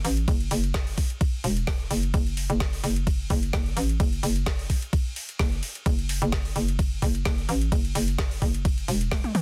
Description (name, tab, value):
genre	bass house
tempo	129 BPM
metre	4/4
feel	swing 54% on 16ths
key	F# minor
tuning	A4 = 440 Hz
part	hollow knocking FM bass	bass	0.0-9.2 s	E1 to A1	-28 LUFS	equal	overdrive, sidechain pumping
part	garage drum kit	drums	0.0-9.4 s	hi-hat, ride cymbal, snare drum, toms	-35 LUFS	equal	overdrive
part	electronic kick drum	drums	0.3-9.2 s	none	-27 LUFS	equal	overdrive
room	little or no reverb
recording	dense, heavily limited modern master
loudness	-26 LUFS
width	mono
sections	0.0-9.4 A section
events	drum fill 9.1-9.4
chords	none